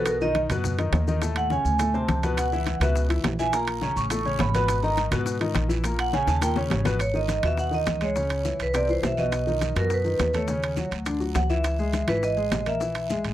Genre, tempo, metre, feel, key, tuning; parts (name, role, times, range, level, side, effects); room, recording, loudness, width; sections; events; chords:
Afro-Cuban jazz; 207 BPM; 4/4; straight; G# minor; A4 = 440 Hz
vibraphone with medium hard mallets; melody; 0.0-13.2 s; A#4 to C#6; -26 LUFS; right 2 dB
clear baby grand piano; accompaniment; 0.0-13.3 s; A2 to E5; -29 LUFS; left 3 dB
upright bass; bass; 0.0-13.3 s; G#1 to G#2; -27 LUFS; equal
bongos; percussion; 0.1-13.2 s; -33 LUFS; left 7 dB
congas; percussion; 0.1-13.3 s; -33 LUFS; equal
maracas; percussion; 0.1-13.3 s; -43 LUFS; left 6 dB
timbales; percussion; 0.1-13.3 s; -31 LUFS; right 6 dB
guiro; percussion; 2.4-13.3 s; -42 LUFS; right 10 dB
light reverb; dry, close 1970s-style studio recording; -22 LUFS; side -13 dB against mid
0.0-7.0 A section; 7.0-13.3 B section
vibraphone solo 0.0-7.0; drum fill 6.3-7.0
0.1 B; 1.2 Dmaj7#11; 1.8 D5; 2.4 C#m7; 3.5 A#mmaj7; 4.1 Aadd9; 4.7 G#m; 5.8 A#mmaj7; 6.4 D#5; 7.0 G#m; 8.2 C#m; 8.7 C; 9.3 B; 10.5 Dmaj7; 11.1 Dadd9; 11.6 C#m; 12.8 Eadd11